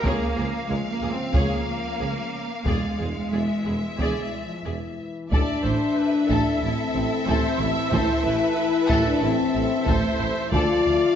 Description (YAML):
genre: cinematic, epic orchestral film score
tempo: 92 BPM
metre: 4/4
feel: straight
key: A minor from 5.3 s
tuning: A4 = 440 Hz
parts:
  - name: warm symphonic violin section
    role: melody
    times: 0.0-11.2 s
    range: E5 to F5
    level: -33 LUFS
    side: left 4 dB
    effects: none
  - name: dark symphonic violin section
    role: second line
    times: 0.0-11.2 s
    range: C4 to E5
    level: -32 LUFS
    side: left 3 dB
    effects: none
  - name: rich symphonic viola section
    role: accompaniment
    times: 0.0-11.2 s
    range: Ab4 to E5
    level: -32 LUFS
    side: right 1 dB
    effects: none
  - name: mellow French horn section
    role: sustained chords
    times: 0.0-11.2 s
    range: D3 to F4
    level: -25 LUFS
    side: left 4 dB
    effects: none
  - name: mellow tuba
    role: bass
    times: 0.0-11.0 s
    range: E1 to D2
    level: -31 LUFS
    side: right 3 dB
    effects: none
  - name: rich symphonic cello section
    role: bass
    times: 0.0-10.9 s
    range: D2 to C4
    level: -31 LUFS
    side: right 2 dB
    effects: none
  - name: rich symphonic double bass section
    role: bass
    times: 0.0-10.9 s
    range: A1 to E2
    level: -31 LUFS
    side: right 3 dB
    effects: none
  - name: taiko ensemble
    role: drums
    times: 0.0-11.1 s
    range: none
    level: -27 LUFS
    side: equal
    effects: none
  - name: clear symphonic string section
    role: sustained chords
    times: 5.3-11.2 s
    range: F3 to A5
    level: -32 LUFS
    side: left 2 dB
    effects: none
  - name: warm trombone section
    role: sustained chords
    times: 5.3-11.2 s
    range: E3 to A3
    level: -34 LUFS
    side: right 5 dB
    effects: none
room: wet scoring stage reverb, RT60 1.6 s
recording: nothing above 7.6 kHz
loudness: -21 LUFS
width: side -9 dB against mid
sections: 0.0-5.3 A section; 5.3-11.2 B section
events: none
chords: 0.0 Db; 2.7 E7; 5.3 Am; 10.5 Dm